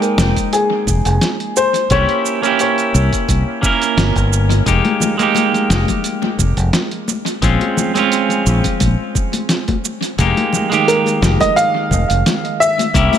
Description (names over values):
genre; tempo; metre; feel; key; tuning
sunset chillout; 87 BPM; 4/4; swing 54% on 16ths; F minor; A4 = 440 Hz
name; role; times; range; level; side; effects
warm baby grand piano; melody; 0.0-4.3, 10.9-13.2 s; Ab4 to F5; -17 LUFS; equal; analog delay
clean electric guitar; accompaniment; 0.0-13.2 s; Eb3 to G5; -18 LUFS; moving between left 6 dB and right 6 dB; auto-pan, analog delay
dusty soul sampler-style drum kit; drums; 0.0-13.2 s; hi-hat, shaker, snare drum; -21 LUFS; right 1 dB; overdrive, analog delay
fingered electric bass; bass; 0.2-13.1 s; F1 to C2; -15 LUFS; equal; none
electronic kick drum; drums; 0.4-13.1 s; none; -20 LUFS; equal; none
congas; percussion; 4.8-13.2 s; none; -23 LUFS; left 5 dB; analog delay
room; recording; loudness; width
light reverb, digital ambience; echo-heavy mix; -13 LUFS; side -9 dB against mid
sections
0.0-13.2 A section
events
none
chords
0.0 Fm11; 1.9 C7b9; 4.7 Fm11; 7.4 Bbm9; 10.2 Fm11